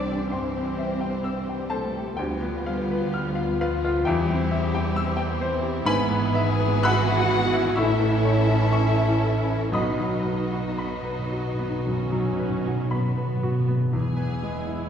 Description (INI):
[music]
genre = classical, romantic movement for piano and orchestra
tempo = 56-67 BPM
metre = 4/4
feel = rubato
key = C major, E major from 5.9 s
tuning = A4 = 440 Hz
[part]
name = clear baby grand piano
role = melody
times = 0.0-14.9 s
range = B1 to F#6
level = -26 LUFS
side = left 1 dB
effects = none
[part]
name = muted studio violin section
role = melody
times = 0.0-14.9 s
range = F4 to G#5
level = -36 LUFS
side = left 4 dB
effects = none
[part]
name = muted studio violin section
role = second line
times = 0.0-14.9 s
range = B3 to A4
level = -32 LUFS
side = left 3 dB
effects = none
[part]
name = muted symphonic viola section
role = accompaniment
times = 0.0-14.9 s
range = E3 to E4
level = -31 LUFS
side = right 1 dB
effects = none
[part]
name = muted symphonic cello section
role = bass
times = 0.0-14.9 s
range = E2 to F#4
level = -31 LUFS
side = right 2 dB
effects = none
[part]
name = muted symphonic double bass section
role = bass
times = 0.0-14.9 s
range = E1 to E2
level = -28 LUFS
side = right 2 dB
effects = none
[part]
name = timpani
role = percussion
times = 9.7-14.9 s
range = E2 to B2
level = -28 LUFS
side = equal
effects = none
[sound]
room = wet recital hall reverb, RT60 1.8 s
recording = heard from further back in the room, nothing above 11.0 kHz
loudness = -22 LUFS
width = side -8 dB against mid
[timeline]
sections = 0.0-13.9 A section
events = timpani fill 9.7-13.9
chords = 0.0 C; 2.2 Bdim/D; 4.1 C/E; 5.9 E/G#; 7.8 A; 9.7 B; 13.9 E